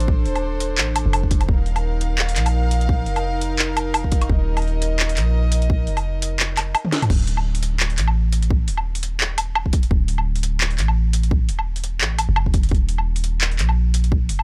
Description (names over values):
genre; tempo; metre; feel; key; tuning
half-time drum and bass; 171 BPM; 4/4; swing 57% on 16ths, half-time; D phrygian; A4 = 444 Hz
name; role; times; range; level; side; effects
warm chamber string section; sustained chords; 0.0-7.1 s; D4 to F5; -30 LUFS; equal; sidechain pumping
long sustained 808-style bass; bass; 0.0-14.4 s; D1 to Bb1; -23 LUFS; equal; none
drum and bass drum kit; drums; 0.0-14.4 s; crash cymbal, handclaps, hi-hat, snare drum, toms, woodblock; -25 LUFS; equal; none
electronic kick drum; drums; 0.1-14.2 s; none; -21 LUFS; equal; none
room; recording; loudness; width
little or no reverb; dry, gritty hardware recording; -20 LUFS; mono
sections
0.0-7.1 A section; 7.1-14.4 A section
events
drop 0.0-7.1, 7.1-14.4; drum fill 6.8; band accent 6.9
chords
0.0 Dm; 1.5 Eb5; 7.1 D5; 12.7 Eb5